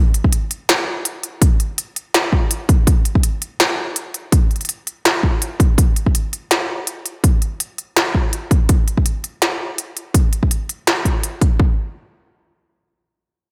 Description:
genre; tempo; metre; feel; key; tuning
drum and bass; 165 BPM; 4/4; swing 56% on 16ths, half-time; none; none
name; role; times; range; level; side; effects
industrial drum kit; drums; 0.1-11.5 s; hi-hat, snare drum; -20 LUFS; equal; none
electronic kick drum; drums; 0.2-11.7 s; none; -17 LUFS; equal; none
room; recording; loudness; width
light reverb; none; -18 LUFS; mono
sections
0.0-11.6 A section; 11.6-13.5 B section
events
none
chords
none

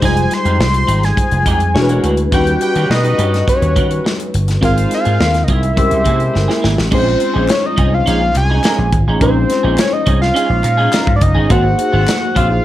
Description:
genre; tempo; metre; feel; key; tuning
polished 1980s jazz-funk pop; 105 BPM; 4/4; straight; unclear; A4 = 437 Hz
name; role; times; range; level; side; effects
fat analog lead; melody; 0.0-12.6 s; C5 to C6; -18 LUFS; equal; phaser, plate reverb
warm horn section; second line; 0.0-6.6 s; G3 to Db5; -25 LUFS; left 2 dB; plate reverb
tine electric piano; accompaniment; 0.0-12.6 s; G3 to C5; -19 LUFS; left 2 dB; ensemble chorus, plate reverb
clean electric guitar; riff; 0.0-12.5 s; Gb3 to Bb4; -23 LUFS; right 4 dB; ensemble chorus
vintage slap bass; bass; 0.0-12.6 s; E1 to Eb3; -16 LUFS; equal; none
modern studio drum kit; drums; 0.0-12.5 s; crash cymbal, hi-hat, kick drum, snare drum; -18 LUFS; equal; none
group handclap; percussion; 7.5-12.2 s; none; -31 LUFS; left 4 dB; none
room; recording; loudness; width
moderate studio reverb, RT60 0.6 s; none; -11 LUFS; side -13 dB against mid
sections
0.0-6.9 A section; 6.9-12.6 B section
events
drum fill 6.3-6.9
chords
0.0 Fm9; 1.8 E9; 2.3 Eb7alt; 4.6 Ab6; 5.8 C7b9b13; 6.9 Bbm11; 11.5 Ab13

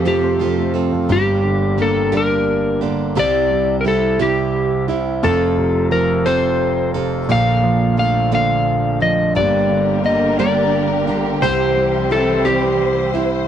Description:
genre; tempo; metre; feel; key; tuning
six-eight pop ballad; 58 BPM (dotted quarters); 6/8; straight; G minor; A4 = 440 Hz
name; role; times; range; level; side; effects
electric slide guitar; melody; 0.0-13.1 s; G4 to F5; -18 LUFS; left 2 dB; none
warm concert grand piano; accompaniment; 0.0-13.5 s; F1 to C5; -19 LUFS; left 1 dB; none
warm studio string section; sustained chords; 0.0-1.1, 9.4-13.5 s; D3 to C5; -22 LUFS; left 1 dB; none
picked plugged-in steel-string acoustic guitar; arpeggios; 0.0-13.5 s; G2 to A4; -22 LUFS; right 12 dB; none
room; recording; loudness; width
little or no reverb; dry, close 1970s-style studio recording; -14 LUFS; side -9 dB against mid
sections
0.0-1.1 A section; 1.1-13.5 B section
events
none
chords
0.0 F; 1.1 Gm; 3.2 C; 5.2 F; 7.3 Bbmaj7; 9.4 Gm; 11.4 C

